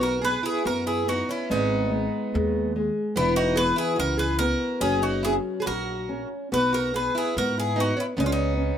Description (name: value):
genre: fado-style ballad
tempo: 72 BPM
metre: 2/4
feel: rubato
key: B major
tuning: A4 = 445 Hz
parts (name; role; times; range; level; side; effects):
- Irish bouzouki; melody; 0.0-8.8 s; D#4 to B4; -27 LUFS; equal; none
- picked plugged-in twelve-string acoustic guitar; second line; 0.0-8.8 s; B3 to G#4; -31 LUFS; right 5 dB; none
- nylon-string guitar; accompaniment; 0.0-8.8 s; E3 to C#4; -26 LUFS; left 2 dB; none
- upright bass; bass; 0.0-8.7 s; E1 to G#2; -29 LUFS; right 1 dB; none
room: small room ambience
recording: rough home demo mix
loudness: -22 LUFS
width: side -9 dB against mid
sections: 0.0-8.8 A section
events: none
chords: 0.0 B5; 1.5 G#m; 3.2 E5; 4.8 F#; 6.5 Bmaj7(no3); 8.2 C#5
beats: 0.65 | 1.50 2.34 | 3.16 3.98 | 4.81 5.67 | 6.53 7.37 | 8.18